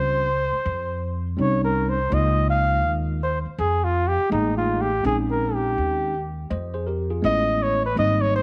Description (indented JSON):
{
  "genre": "hip hop, jazz-hop",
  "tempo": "82 BPM",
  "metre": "4/4",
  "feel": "swing 64% on 16ths",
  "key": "unclear",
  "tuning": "A4 = 439 Hz",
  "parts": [
    { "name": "mellow flugelhorn", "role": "melody", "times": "0.0-8.4 s", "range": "Eb4 to F5", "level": "-25 LUFS", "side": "equal", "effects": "none" },
    { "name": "tine electric piano", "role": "accompaniment", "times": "0.0-8.4 s", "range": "G3 to Eb5", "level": "-29 LUFS", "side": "equal", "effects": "none" },
    { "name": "upright bass", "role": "bass", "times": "0.0-8.4 s", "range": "Ab1 to F2", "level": "-28 LUFS", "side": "equal", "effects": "none" }
  ],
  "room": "light reverb, small room ambience",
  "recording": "none",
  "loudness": "-23 LUFS",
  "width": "mono",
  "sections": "0.0-8.4 A section",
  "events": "flugelhorn solo 0.0-8.4",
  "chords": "0.0 Eb13; 2.1 Db6; 5.0 Bbm11; 7.2 Amaj9"
}